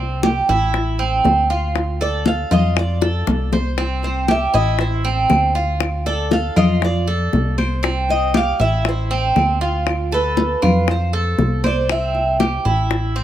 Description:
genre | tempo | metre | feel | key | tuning
latin, Cuban son and guajira | 118 BPM | 4/4 | straight | C major | A4 = 439 Hz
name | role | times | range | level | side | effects
Cuban tres | arpeggios | 0.0-13.2 s | C4 to C5 | -21 LUFS | right 3 dB | none
plucky analog bass | bass | 0.0-13.2 s | A1 to F2 | -20 LUFS | equal | none
bongos | percussion | 0.2-13.2 s | none | -24 LUFS | left 6 dB | none
congas | percussion | 0.2-13.2 s | none | -22 LUFS | left 2 dB | none
Cuban tres | melody | 2.0-12.4 s | B4 to F5 | -23 LUFS | equal | none
claves | percussion | 4.3-12.7 s | none | -32 LUFS | left 6 dB | none
room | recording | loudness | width
light reverb | none | -16 LUFS | side -11 dB against mid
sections
0.0-13.2 A section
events
Cuban tres solo 0.0-13.2; drum fill 3.0-3.8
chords
0.0 C; 0.7 Amadd11; 1.8 Dm; 2.8 F6; 3.8 C; 4.8 Amadd11; 5.8 Dm; 6.8 F6; 7.8 C; 8.8 Amadd11; 9.9 Dm; 10.9 F; 11.9 C

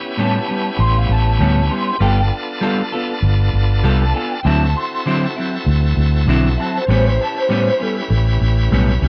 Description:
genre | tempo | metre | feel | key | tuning
blues | 98 BPM | 4/4 | swing 54% on 16ths | unclear | A4 = 440 Hz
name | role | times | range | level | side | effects
bright tonewheel organ | accompaniment | 0.0-9.1 s | B3 to B4 | -27 LUFS | equal | slow rotary speaker, overdrive
electric guitar through a small old amp | second line | 0.2-8.1 s | A4 to C6 | -24 LUFS | equal | ensemble chorus
semi-hollow electric guitar | stabs | 0.2-9.1 s | A2 to A4 | -21 LUFS | equal | none
vintage muted fingered electric bass | bass | 0.8-9.1 s | G1 to D2 | -17 LUFS | equal | none
room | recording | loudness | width
little or no reverb | dry, close 1970s-style studio recording | -17 LUFS | mono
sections
0.0-9.1 A section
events
clean electric guitar solo 0.0-9.1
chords
0.0 A9; 2.0 G9; 4.4 D9; 6.9 A9

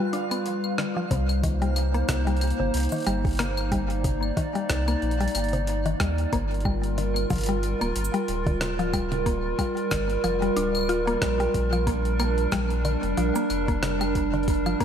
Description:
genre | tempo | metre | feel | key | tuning
IDM | 92 BPM | 4/4 | swing 56% on 16ths | unclear | A4 = 444 Hz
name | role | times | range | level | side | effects
warbly tape-like pad | sustained chords | 0.0-14.8 s | G3 to D5 | -27 LUFS | right 1 dB | chorus, built-in reverb
mallet-like synth pluck | arpeggios | 0.0-14.8 s | C3 to F4 | -30 LUFS | left 2 dB | chorus, tape echo
twinkling granular texture | texture | 0.0-1.1 s | F5 | -40 LUFS | right 5 dB | built-in reverb, wide subtle chorus
jungle sampler-style drum kit | drums | 0.1-14.8 s | cabasa, claves, hi-hat, rim click, toms | -33 LUFS | left 1 dB | overdrive, diffuse ambient delay
warm sub bass | bass | 1.1-14.8 s | D1 to Eb2 | -27 LUFS | equal | none
electronic kick drum | drums | 1.1-14.8 s | none | -28 LUFS | equal | none
room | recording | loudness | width
moderate plate reverb, RT60 2.6 s | dreamy mix soaked in reverb | -23 LUFS | side -8 dB against mid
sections
0.0-1.1 A section; 1.1-14.8 B section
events
break 0.0-1.1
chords
0.0 G7; 1.1 Cm7; 6.3 Gm7; 11.5 Bb6

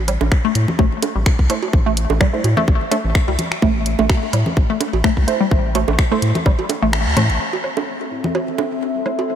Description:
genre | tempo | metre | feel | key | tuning
minimal techno | 127 BPM | 4/4 | swing 55% on 16ths | A minor | A4 = 440 Hz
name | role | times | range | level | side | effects
round analog bass | bass | 0.0-9.4 s | A1 to A2 | -19 LUFS | equal | sidechain pumping, high-pass filter
hollow square pluck | riff | 0.1-7.2 s | G3 to A3 | -21 LUFS | left 1 dB | chorus, phaser, sidechain pumping, ping-pong delay
garage drum kit | drums | 0.1-7.4 s | finger snaps, hi-hat | -25 LUFS | equal | low-pass filter on snare, low-pass filter on hats
woodblock, bongos, congas and cowbell | percussion | 0.1-9.3 s | none | -24 LUFS | right 3 dB | overdrive, ping-pong delay
electronic kick drum | drums | 0.3-6.6 s | none | -16 LUFS | equal | none
filtered dub chord stab | stabs | 1.5-2.4, 5.3-6.2, 9.1 s | A3 to C5 | -27 LUFS | right 3 dB | chorus, ping-pong delay
warbly tape-like pad | texture | 7.7-9.4 s | C4 to C6 | -23 LUFS | left 2 dB | chorus, built-in reverb, sidechain pumping
room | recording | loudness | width
moderate huge ambient reverb, RT60 4.0 s | dreamy mix soaked in reverb | -15 LUFS | side -9 dB against mid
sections
0.0-7.4 A section; 7.4-9.4 B section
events
kick drops out 6.9-7.4; band accent 6.9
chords
0.0 Am

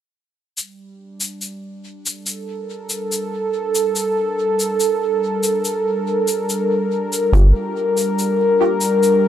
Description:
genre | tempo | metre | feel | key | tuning
ambient dub | 71 BPM | 4/4 | straight | G minor | A4 = 440 Hz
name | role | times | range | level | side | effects
warm analog pad | sustained chords | 0.6-9.3 s | G3 to Bb4 | -18 LUFS | equal | chorus
shaker | drums | 0.6-9.2 s | none | -24 LUFS | left 2 dB | none
filtered dub chord stab | stabs | 7.3-7.5 s | Bb3 to G4 | -25 LUFS | left 1 dB | phaser, lush chorus, cassette tape, dub echo
round analog bass | bass | 7.3-7.5 s | G1 | -11 LUFS | equal | none
room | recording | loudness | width
light reverb, small room ambience | dark, warm production | -17 LUFS | side -10 dB against mid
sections
0.6-9.3 A section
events
fade-in on analog synth pad 0.6-9.3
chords
0.6 Gm

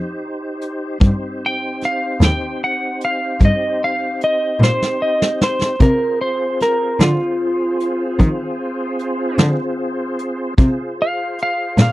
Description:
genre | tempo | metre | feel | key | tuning
slow blues | 50 BPM (dotted quarters) | 12/8 | straight | C minor | A4 = 440 Hz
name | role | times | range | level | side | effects
tonewheel organ | sustained chords | 0.0-11.9 s | C4 to C5 | -24 LUFS | equal | chorus vibrato, slow rotary speaker
vintage brush drum kit | drums | 0.6-11.9 s | hi-hat, kick drum, snare drum | -15 LUFS | equal | none
warm cello | bass | 1.0-11.9 s | Eb2 to Eb3 | -16 LUFS | equal | none
clean lap steel guitar | melody | 1.5-11.9 s | F4 to G5 | -19 LUFS | equal | none
room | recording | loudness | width
little or no reverb | dry, close 1970s-style studio recording | -16 LUFS | side -17 dB against mid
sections
0.0-11.9 A section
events
electric slide guitar solo 0.0-11.9; drum fill 4.6-5.8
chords
0.0 Cm; 5.8 Fm

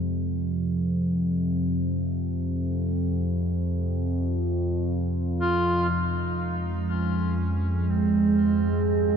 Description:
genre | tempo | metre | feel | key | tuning
dark ambient drone | free time | none | none | F minor | A4 = 440 Hz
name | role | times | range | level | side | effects
bronze singing bowl | arpeggios | 0.0-1.4 s | Ab3 | -50 LUFS | right 2 dB | none
analog drone | drone | 0.0-9.2 s | F2 to C3 | -25 LUFS | equal | chorus
clear duduk | melody | 5.4-9.2 s | C4 to F4 | -29 LUFS | right 1 dB | shimmer reverb, ping-pong delay
deep dark ambient pad | sustained chords | 6.7-9.2 s | Ab3 to F5 | -24 LUFS | right 4 dB | chorus, built-in reverb
room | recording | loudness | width
wet cathedral reverb, RT60 5.3 s | dreamy mix soaked in reverb, faint mains hum | -23 LUFS | side -7 dB against mid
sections
0.0-5.9 A section; 5.9-9.2 B section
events
fade-in on duduk 5.9-9.2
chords
0.0 Fm; 5.9 Fmadd9

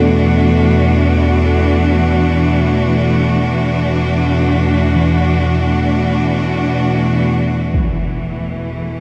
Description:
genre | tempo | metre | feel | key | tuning
dark ambient drone | free time | none | none | unclear | A4 = 440 Hz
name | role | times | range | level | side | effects
clear chamber cello section | sustained chords | 0.0-9.0 s | E3 to F#4 | -18 LUFS | equal | none
gamelan-type bossed gongs | arpeggios | 0.0-9.0 s | E3 to A4 | -26 LUFS | equal | diffuse ambient delay
analog drone | drone | 0.0-9.0 s | E2 to B2 | -17 LUFS | equal | chorus
impact | percussion | 7.7-7.9 s | none | -23 LUFS | equal | low-pass filter on sfx
room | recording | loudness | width
moderate huge ambient reverb, RT60 8.5 s | none | -14 LUFS | mono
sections
0.0-7.7 A section; 7.7-9.0 B section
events
none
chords
0.0 Esus2; 7.7 E5

